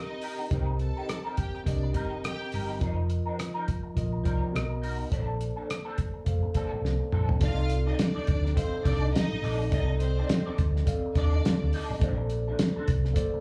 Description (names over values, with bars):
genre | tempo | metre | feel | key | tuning
lush 1970s-style soul | 104 BPM | 4/4 | swing 58% on 16ths | C dorian | A4 = 440 Hz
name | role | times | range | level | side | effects
dark studio string section | second line | 0.0-2.7, 7.4-11.7 s | C4 to A5 | -40 LUFS | equal | slapback echo
mellow tine electric piano | accompaniment | 0.0-13.4 s | F3 to F5 | -37 LUFS | equal | slapback echo
electric guitar through a small old amp | riff | 0.1-13.4 s | C4 to D5 | -40 LUFS | equal | wah, ensemble chorus, slapback echo
cloth-damped thuddy drum kit | drums | 0.2-13.3 s | hi-hat, kick drum, rim click, snare drum, toms | -31 LUFS | equal | slapback echo
hollow-body short-scale fingered electric bass | bass | 0.5-13.4 s | F1 to Eb2 | -30 LUFS | equal | none
room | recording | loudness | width
moderate club reverb, RT60 0.5 s | live gig heard through the venue's PA, club reverb, small room ambience | -28 LUFS | mono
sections
0.0-7.4 A section; 7.4-13.4 B section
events
drum fill 6.8-7.4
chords
0.0 Cm7; 2.8 F7sus4; 4.5 Bmaj7; 5.1 Bbmaj9; 7.4 Cm69; 12.0 Bbmaj9